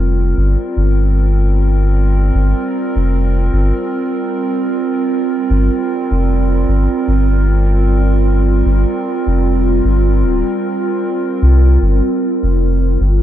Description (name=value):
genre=ambient dub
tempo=76 BPM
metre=4/4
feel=swing 55% on 16ths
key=G minor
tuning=A4 = 440 Hz
part: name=warbly tape-like pad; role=sustained chords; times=0.0-13.2 s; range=G3 to Bb4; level=-17 LUFS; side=right 3 dB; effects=chorus, built-in reverb
part: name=soft dub sub bass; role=bass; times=0.0-13.2 s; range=D1 to C2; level=-12 LUFS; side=equal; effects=none
room=light reverb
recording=none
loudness=-12 LUFS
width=side -12 dB against mid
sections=0.0-11.8 A section; 11.8-13.2 A section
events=none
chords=0.0 Gm7